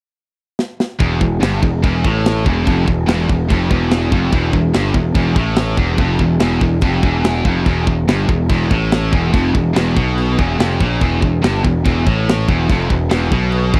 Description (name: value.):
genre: heavy metal.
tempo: 144 BPM.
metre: 4/4.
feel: straight.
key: E minor.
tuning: A4 = 440 Hz.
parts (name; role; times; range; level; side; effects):
tight metal drum kit; drums; 0.6-13.8 s; crash cymbal, kick drum, snare drum; -20 LUFS; equal; none.
scooped high-gain guitar; riff; 1.0-13.8 s; E2 to B2; -21 LUFS; equal; distortion.
fuzz picked electric bass; bass; 1.0-13.8 s; E1 to B1; -19 LUFS; equal; overdrive.
room: little or no reverb.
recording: dry, close 1970s-style studio recording.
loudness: -16 LUFS.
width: mono.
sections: 0.0-1.0 A section; 1.0-13.8 B section.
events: drum fill 0.6-1.0.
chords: 0.0 N.C.; 1.0 Em.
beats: 0.17 0.59 | 1.00 1.42 1.83 2.25 | 2.67 3.08 3.50 3.91 | 4.33 4.75 5.16 5.58 | 5.99 6.41 6.83 7.24 | 7.66 8.08 8.49 8.91 | 9.33 9.75 10.17 10.59 | 11.01 11.43 11.85 12.27 | 12.69 13.11 13.53.